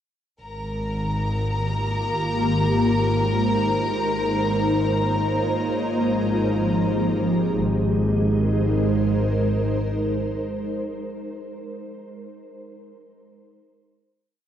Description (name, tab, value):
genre	ambient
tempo	68 BPM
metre	4/4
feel	straight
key	Ab major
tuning	A4 = 440 Hz
part	ethereal airy pad	sustained chords	1.0-11.2 s	Eb3 to C5	-24 LUFS	equal	ensemble chorus, built-in reverb
part	rich studio double bass section	bass	0.4-10.1 s	Ab1	-25 LUFS	equal	none
part	dark studio violin section	texture	0.4-7.5 s	Bb4 to Bb5	-27 LUFS	left 1 dB	none
part	organ-like drone	drone	5.0-10.7 s	Ab3 to Eb4	-29 LUFS	equal	ensemble chorus, built-in reverb
room	wet concert hall reverb, RT60 2.1 s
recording	dark, warm production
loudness	-20 LUFS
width	side -10 dB against mid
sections	0.4-7.5 A section; 7.5-11.0 final chord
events	none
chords	0.4 Eb/Ab; 2.2 Ab; 3.9 Bbm7/Ab; 5.7 Fm7/Ab; 7.5 Ab